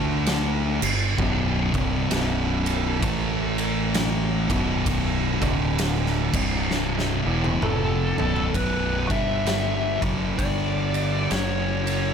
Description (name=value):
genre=stoner and doom metal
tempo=65 BPM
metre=4/4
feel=swing 60% on 8ths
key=B minor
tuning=A4 = 439 Hz
part: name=thick fuzz guitar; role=riff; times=0.0-12.1 s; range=B1 to D4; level=-27 LUFS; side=left 10 dB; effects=distortion
part: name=thick fuzz guitar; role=riff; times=0.0-12.1 s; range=B1 to D4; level=-27 LUFS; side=right 10 dB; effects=distortion
part: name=growling fingered electric bass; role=bass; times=0.0-12.1 s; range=B0 to D2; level=-28 LUFS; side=equal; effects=overdrive
part: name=oversized low-tuned drum kit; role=drums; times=0.3-12.0 s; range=crash cymbal, kick drum, ride cymbal, snare drum, toms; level=-27 LUFS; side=equal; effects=none
part: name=fuzz lead guitar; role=melody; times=7.6-12.1 s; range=A4 to E5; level=-28 LUFS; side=left 2 dB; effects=wah, distortion, ping-pong delay
room=studio ambience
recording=none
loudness=-21 LUFS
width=side -7 dB against mid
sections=0.0-8.5 A section; 8.5-12.1 B section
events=drum fill 6.7-8.5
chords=0.0 D5; 0.7 G5; 1.2 B5; 3.0 A5; 4.4 B5; 5.3 D5; 6.2 C5; 7.2 B5; 9.0 G5; 9.9 F#5; 10.4 G5; 11.3 F#5